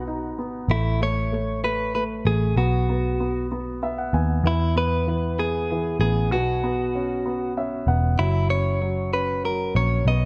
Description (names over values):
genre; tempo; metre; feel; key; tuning
pop; 64 BPM (dotted quarters); 6/8; straight; unclear; A4 = 441 Hz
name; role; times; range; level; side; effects
direct-recorded clean electric guitar; melody; 0.0-10.3 s; E4 to D#5; -28 LUFS; equal; analog delay
warm grand piano; accompaniment; 0.0-10.3 s; B2 to G#5; -30 LUFS; equal; analog delay
vintage muted picked electric bass; bass; 0.0-10.3 s; E1 to E2; -26 LUFS; equal; none
room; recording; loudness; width
moderate spring reverb, RT60 1.1 s, small room ambience; echo-heavy mix, nothing above 10.4 kHz; -24 LUFS; mono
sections
0.0-10.3 A section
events
grand piano fill 3.5-4.4, 7.3-8.2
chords
0.0 B; 0.7 A; 2.6 B; 4.4 E; 6.3 Bsus2; 8.2 F#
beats
| 0.69 1.63 | 2.56 3.50 | 4.44 5.38 | 6.31 7.25 | 8.19 9.12 | 10.06